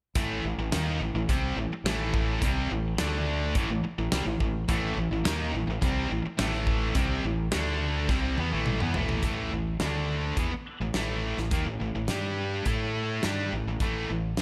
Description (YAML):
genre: classic rock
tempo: 106 BPM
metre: 4/4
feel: straight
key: A minor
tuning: A4 = 441 Hz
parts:
  - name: biting overdriven guitar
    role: riff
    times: 0.2-14.4 s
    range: A2 to A4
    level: -35 LUFS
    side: equal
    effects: none
  - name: tight distorted guitar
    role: riff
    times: 0.2-14.4 s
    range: A2 to A4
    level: -34 LUFS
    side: equal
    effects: distortion
  - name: growling fingered electric bass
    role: bass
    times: 0.2-14.4 s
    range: A1 to A2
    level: -34 LUFS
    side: equal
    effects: overdrive
  - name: big rock drum kit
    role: drums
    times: 0.2-14.4 s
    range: hi-hat, kick drum, snare drum, toms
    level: -33 LUFS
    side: equal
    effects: none
room: light reverb, studio reverb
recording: none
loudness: -29 LUFS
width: mono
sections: 0.2-9.2 A section; 9.2-14.4 B section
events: drum fill 8.1-9.2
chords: 0.2 Am; 3.0 D5; 3.6 Am; 7.5 D5; 8.1 Am; 9.2 A5; 9.8 D5; 10.4 A5; 12.1 G5; 12.7 A5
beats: | 0.15 0.72 1.29 1.85 | 2.42 2.99 3.56 4.12 | 4.69 5.26 5.83 6.40 | 6.97 7.54 8.10 8.67 | 9.24 9.81 10.38 10.96 | 11.53 12.10 12.67 13.24 | 13.82 14.39